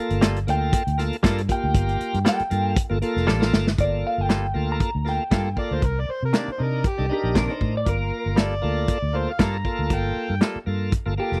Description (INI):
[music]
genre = straight-eighth soul blues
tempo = 118 BPM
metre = 4/4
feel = swing 54% on 16ths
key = G minor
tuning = A4 = 440 Hz
[part]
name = bright tonewheel organ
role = accompaniment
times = 0.0-11.4 s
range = Bb3 to Bb4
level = -31 LUFS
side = equal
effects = overdrive, slow rotary speaker
[part]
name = vintage muted fingered electric bass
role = bass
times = 0.1-11.4 s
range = F1 to C3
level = -27 LUFS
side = equal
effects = none
[part]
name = warm soul drum kit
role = drums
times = 0.1-11.4 s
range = hi-hat, kick drum, snare drum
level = -25 LUFS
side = equal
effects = none
[part]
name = direct-recorded clean electric guitar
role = stabs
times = 0.2-10.6 s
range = C3 to A4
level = -29 LUFS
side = equal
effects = none
[part]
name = electric guitar through a small old amp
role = melody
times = 0.5-11.4 s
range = G4 to Bb5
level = -29 LUFS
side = equal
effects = analog chorus, slapback echo
[part]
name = overdriven harmonica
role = second line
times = 5.6-10.4 s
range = G4 to Bb5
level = -31 LUFS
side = equal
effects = none
[sound]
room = small room reverb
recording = dry, close 1970s-style studio recording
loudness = -23 LUFS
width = mono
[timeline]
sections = 0.0-3.8 A section; 3.8-11.4 B section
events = clean electric guitar solo 0.0-3.8; drum fill 3.3-3.8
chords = 0.0 Gm9; 5.8 Cm9; 7.9 Gm9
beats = 0.22 0.73 1.24 | 1.75 2.25 2.76 3.27 | 3.78 4.29 4.80 5.31 | 5.82 6.33 6.84 7.35 | 7.86 8.37 8.88 9.39 | 9.90 10.41 10.92